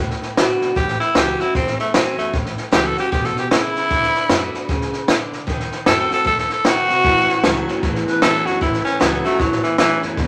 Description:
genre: rockabilly.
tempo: 153 BPM.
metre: 4/4.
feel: swing 61% on 8ths.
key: A major.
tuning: A4 = 440 Hz.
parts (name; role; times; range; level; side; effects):
picked steel-string acoustic guitar; accompaniment; 0.0-10.3 s; E2 to F#4; -27 LUFS; equal; none.
upright bass; bass; 0.0-10.3 s; E1 to B#2; -33 LUFS; equal; none.
compact cocktail drum kit; drums; 0.1-10.3 s; hi-hat, kick drum, snare drum; -22 LUFS; equal; none.
raspy tenor saxophone; melody; 0.8-10.0 s; E3 to B4; -21 LUFS; equal; none.
electric guitar through a small old amp; riff; 7.0-10.3 s; E2 to F#3; -25 LUFS; equal; none.
room: moderate large studio reverb, RT60 0.9 s.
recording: vinyl crackle.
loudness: -18 LUFS.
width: mono.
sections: 0.0-10.3 A section.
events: tenor saxophone solo 0.0-10.3.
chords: 0.0 D6; 0.8 A6; 3.9 D6; 5.5 D#dim7; 7.0 A6.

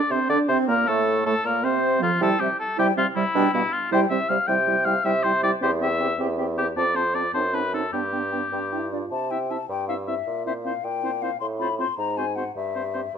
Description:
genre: quick classical-period movement for wind quintet.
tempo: 105 BPM (dotted quarters).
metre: 6/8.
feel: straight.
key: C major from 4.5 s.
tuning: A4 = 439 Hz.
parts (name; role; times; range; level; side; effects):
warm oboe; second line; 0.0-13.0 s; E4 to G5; -24 LUFS; left 2 dB; none.
mellow concert flute; melody; 0.1-13.1 s; F4 to C6; -30 LUFS; left 9 dB; none.
mellow French horn; accompaniment; 0.1-13.0 s; F3 to F4; -30 LUFS; right 1 dB; none.
warm clarinet; accompaniment; 0.1-13.0 s; F3 to G4; -29 LUFS; right 12 dB; none.
warm bassoon; bass; 0.1-13.2 s; E2 to D3; -28 LUFS; right 2 dB; none.
room: moderate recital hall reverb, RT60 1.4 s.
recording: close, detailed microphones.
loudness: -21 LUFS.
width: side -7 dB against mid.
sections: 0.0-9.1 A section; 9.1-13.2 B section.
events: none.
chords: 0.0 Bbmaj9; 1.1 N.C.; 1.6 F5/C; 2.2 C; 3.3 G7/B; 3.9 C; 5.6 C/E; 6.8 F; 7.3 F#dim7; 7.9 G; 9.1 C; 10.3 C7/Bb; 11.4 F/A; 12.0 Ab7; 12.6 C/G.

